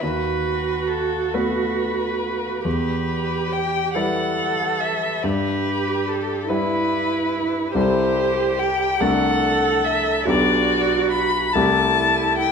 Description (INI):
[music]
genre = classical, slow romantic movement for piano trio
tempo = 47 BPM (dotted quarters)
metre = 6/8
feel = rubato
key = E minor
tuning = A4 = 439 Hz
[part]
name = rich violin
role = melody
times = 0.0-12.5 s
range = A4 to B5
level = -22 LUFS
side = left 5 dB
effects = none
[part]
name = warm cello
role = second line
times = 0.0-12.5 s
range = E4 to A4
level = -24 LUFS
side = right 8 dB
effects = none
[part]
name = warm grand piano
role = accompaniment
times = 0.0-12.5 s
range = B1 to B4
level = -23 LUFS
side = left 1 dB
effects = none
[sound]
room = wet recital hall reverb, RT60 1.5 s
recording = none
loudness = -18 LUFS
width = side -6 dB against mid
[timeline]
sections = 0.0-12.5 A section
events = none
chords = 0.0 B7/D#; 2.7 Em; 5.2 Em/G; 7.8 Am7/C; 9.0 D7/C; 10.3 G/B; 11.6 Am7/C